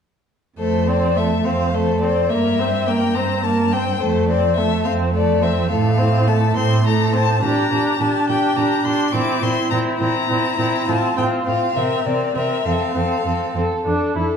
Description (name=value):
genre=quick classical-period movement for string quartet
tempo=70 BPM (dotted quarters)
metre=6/8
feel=straight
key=F major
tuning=A4 = 438 Hz
part: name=clear violin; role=melody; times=0.6-13.5 s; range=C5 to D6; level=-22 LUFS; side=left 7 dB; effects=none
part: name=rich violin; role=second line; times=0.6-14.4 s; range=E4 to C5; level=-23 LUFS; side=left 1 dB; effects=none
part: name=rich viola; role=accompaniment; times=0.6-14.2 s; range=A3 to E4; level=-21 LUFS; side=right 3 dB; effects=none
part: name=rich cello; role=bass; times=0.6-14.2 s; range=F2 to C3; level=-22 LUFS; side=right 2 dB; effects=none
room=wet recital hall reverb, RT60 1.4 s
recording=heard from further back in the room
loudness=-16 LUFS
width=side -7 dB against mid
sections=0.6-14.4 A section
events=none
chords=0.6 F; 2.3 C7/G; 4.0 F; 5.7 F/A; 7.4 Gm/Bb; 9.1 C7/Bb; 10.9 F/A; 11.8 C9; 12.6 F